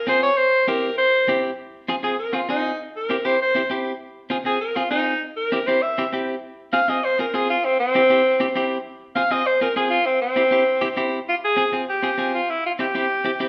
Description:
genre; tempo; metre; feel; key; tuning
latin; 198 BPM; 4/4; straight; F harmonic minor; A4 = 440 Hz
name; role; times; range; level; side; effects
bright alto saxophone; melody; 0.0-13.5 s; C4 to F5; -22 LUFS; equal; none
clean electric guitar; accompaniment; 0.1-13.5 s; C4 to Ab4; -27 LUFS; equal; none
room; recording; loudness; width
wet large studio reverb, RT60 1.1 s; band playing live in one room; -21 LUFS; mono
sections
0.0-1.6 A section; 1.6-11.3 B section; 11.3-13.5 C section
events
alto saxophone solo 1.6-11.3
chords
0.4 C7; 1.6 Fm; 2.8 C7; 4.0 Fm; 5.2 C7; 6.4 Fm; 7.6 C; 8.9 Fm; 10.1 C; 11.3 Fm; 12.5 C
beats
0.08 | 0.38 0.68 0.99 1.29 | 1.59 1.90 2.20 2.50 | 2.80 3.11 3.41 3.71 | 4.01 4.32 4.62 4.92 | 5.23 5.53 5.83 6.13 | 6.44 6.74 7.04 7.35 | 7.65 7.95 8.25 8.56 | 8.86 9.16 9.46 9.77 | 10.07 10.37 10.68 10.98 | 11.28 11.58 11.88 12.19 | 12.49 12.79 13.10 13.40

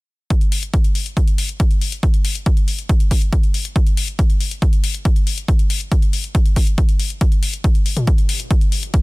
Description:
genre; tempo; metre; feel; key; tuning
trance; 139 BPM; 4/4; straight; none; none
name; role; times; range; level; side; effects
electronic kick drum; drums; 0.3-9.0 s; none; -15 LUFS; equal; overdrive
punchy analog drum machine; drums; 0.3-9.0 s; hi-hat, toms; -25 LUFS; left 5 dB; overdrive, sidechain pumping on hats, sidechain pumping on toms
room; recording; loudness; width
digital ambience; dense, heavily limited modern master; -15 LUFS; side -24 dB against mid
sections
0.3-9.0 A section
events
none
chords
none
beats
| 0.30 0.74 1.17 1.60 | 2.03 2.46 2.89 3.33 | 3.76 4.19 4.62 5.05 | 5.48 5.92 6.35 6.78 | 7.21 7.64 8.07 8.51 | 8.94

